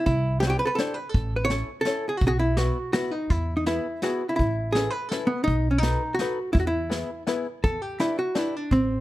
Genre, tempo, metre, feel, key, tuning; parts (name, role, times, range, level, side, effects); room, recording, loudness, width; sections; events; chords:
musette waltz; 167 BPM; 3/4; straight; E major; A4 = 440 Hz
archtop guitar, miked and amplified; melody; 0.0-9.0 s; B3 to C#5; -25 LUFS; equal
upright bass; bass; 0.1-9.0 s; A1 to E2; -26 LUFS; equal
vintage brush drum kit; drums; 0.1-8.8 s; hi-hat, kick drum, snare drum; -28 LUFS; equal
open-back banjo; accompaniment; 0.4-8.5 s; B3 to C#5; -31 LUFS; left 4 dB
little or no reverb; close, detailed microphones; -23 LUFS; side -16 dB against mid
0.0-7.6 A section; 7.6-9.0 B section
0.1 Cadd9; 1.1 A; 2.2 Bsus4; 3.3 E; 4.4 Aadd9; 5.5 B7; 6.5 E; 7.6 Em7